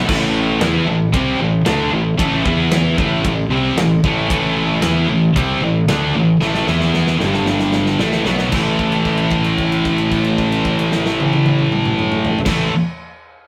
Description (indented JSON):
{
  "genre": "heavy metal",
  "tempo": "113 BPM",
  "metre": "4/4",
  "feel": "straight",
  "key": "A minor",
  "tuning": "A4 = 440 Hz",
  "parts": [
    { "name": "scooped high-gain guitar", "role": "riff", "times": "0.0-12.7 s", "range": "G2 to E4", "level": "-18 LUFS", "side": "equal", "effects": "distortion" },
    { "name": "fuzz fingered electric bass", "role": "bass", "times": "0.0-12.7 s", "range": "G1 to E2", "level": "-24 LUFS", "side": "equal", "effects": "overdrive" },
    { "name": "modern studio drum kit", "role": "drums", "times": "0.1-12.6 s", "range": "crash cymbal, kick drum, ride cymbal, snare drum, toms", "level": "-24 LUFS", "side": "equal", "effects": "none" }
  ],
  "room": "moderate studio reverb, RT60 0.6 s",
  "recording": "rough rehearsal-room recording, warm saturation",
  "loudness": "-16 LUFS",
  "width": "mono",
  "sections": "0.1-8.5 A section; 8.5-12.8 B section",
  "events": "drum fill 6.4-8.5; held note 8.5-12.5",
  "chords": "0.1 Am; 2.4 E5; 3.0 Am; 6.7 E5; 7.2 G5; 8.0 A5",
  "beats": "| 0.08 0.60 1.13 1.66 | 2.18 2.71 3.24 3.76 | 4.29 4.82 5.35 5.88 | 6.41 6.93 7.46 8.00 | 8.53 9.05 9.59 10.12 | 10.65 11.18 11.71 12.24"
}